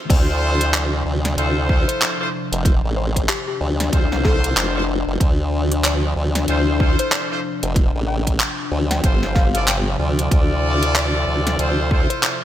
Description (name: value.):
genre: glitch hop.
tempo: 94 BPM.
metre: 4/4.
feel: swing 60% on 16ths.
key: D minor.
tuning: A4 = 441 Hz.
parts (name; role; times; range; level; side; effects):
warbly tape-like pad; sustained chords; 0.5-12.4 s; C3 to E5; -27 LUFS; left 3 dB; chorus, built-in reverb, sidechain pumping.
bright horn section; stabs; 0.1-12.4 s; E4 to D5; -24 LUFS; equal; sidechain pumping, digital delay.
formant-sweep wobble bass; bass; 0.1-12.1 s; F1 to D2; -20 LUFS; equal; chorus, high-pass filter.
electronic kick drum; drums; 0.1-12.1 s; none; -18 LUFS; equal; none.
pop drum kit; drums; 0.1-12.4 s; crash cymbal, handclaps, hi-hat, snare drum; -23 LUFS; equal; gated reverb.
woody wave-folded pluck; melody; 0.7-12.4 s; G4 to G5; -30 LUFS; left 3 dB; chorus, digital delay.
room: light reverb, digital ambience.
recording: bright 1980s-style digital production, high-pass filter.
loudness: -16 LUFS.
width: side -12 dB against mid.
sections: 0.1-12.4 A section.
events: drop 0.1-12.4.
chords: 0.1 Dm7.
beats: | 0.10 0.74 1.38 2.01 | 2.65 3.29 3.93 4.57 | 5.21 5.84 6.48 7.12 | 7.76 8.40 9.04 9.67 | 10.31 10.95 11.59 12.23.